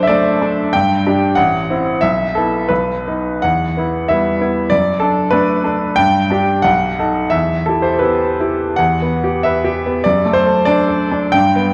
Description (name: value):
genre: classical, romantic character piece for solo piano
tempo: 74-99 BPM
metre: 2/4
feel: rubato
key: E minor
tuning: A4 = 441 Hz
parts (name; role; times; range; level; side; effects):
- bright baby grand piano; solo; 0.0-11.7 s; A1 to G5; -15 LUFS; equal; none
room: wet scoring stage reverb, RT60 1.8 s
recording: worn, warbling old tape, cassette tape, warbly pitch drift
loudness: -16 LUFS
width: mono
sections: 0.0-8.8 A section; 8.8-11.7 A section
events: none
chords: 0.0 D/F#; 0.7 G5; 1.4 Am; 2.0 E5/B; 2.7 B; 3.4 Em; 4.7 D/F#; 6.0 G5; 6.7 B7; 7.3 Em; 10.0 D/F#